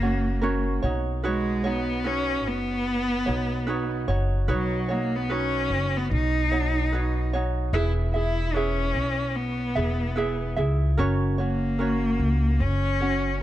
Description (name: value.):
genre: pop.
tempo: 74 BPM.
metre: 4/4.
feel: swing 60% on 16ths.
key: B major.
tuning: A4 = 440 Hz.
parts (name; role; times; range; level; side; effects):
clear cello; melody; 0.0-13.4 s; F#3 to E4; -27 LUFS; left 1 dB; none.
ukulele; accompaniment; 0.0-13.4 s; C#4 to E5; -29 LUFS; right 3 dB; none.
upright bass; bass; 0.0-13.4 s; E1 to C#2; -26 LUFS; equal; none.
room: light reverb, small room ambience.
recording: dark, warm production.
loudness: -23 LUFS.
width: side -13 dB against mid.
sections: 0.0-13.4 A section.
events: none.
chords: 0.0 F#; 0.8 Badd9; 7.7 E; 11.0 F#.